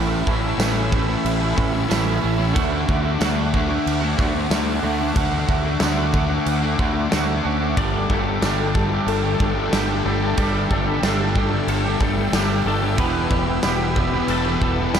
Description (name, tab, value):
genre	rock, shoegaze and dream pop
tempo	92 BPM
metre	4/4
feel	straight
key	unclear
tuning	A4 = 445 Hz
part	sweeping resonant pad	sustained chords	0.0-15.0 s	A4 to E6	-30 LUFS	equal	chorus
part	thick fuzz guitar	riff	0.0-15.0 s	E2 to D4	-24 LUFS	left 9 dB	distortion, analog chorus
part	twangy electric guitar	riff	0.0-15.0 s	A2 to G4	-25 LUFS	right 11 dB	reverse reverb
part	growling fingered electric bass	bass	0.0-15.0 s	E1 to D2	-24 LUFS	equal	overdrive
part	gated 80s drum kit	drums	0.3-15.0 s	crash cymbal, kick drum, snare drum	-24 LUFS	equal	none
part	tambourine	percussion	0.6-15.0 s	none	-36 LUFS	right 6 dB	none
part	direct-recorded clean electric guitar	arpeggios	7.8-15.0 s	G4 to D5	-28 LUFS	left 8 dB	ensemble chorus, slapback echo
room	light reverb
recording	none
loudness	-18 LUFS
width	side -8 dB against mid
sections	0.0-15.0 A section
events	none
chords	0.0 A; 2.6 D; 7.8 Gsus2; 13.0 Em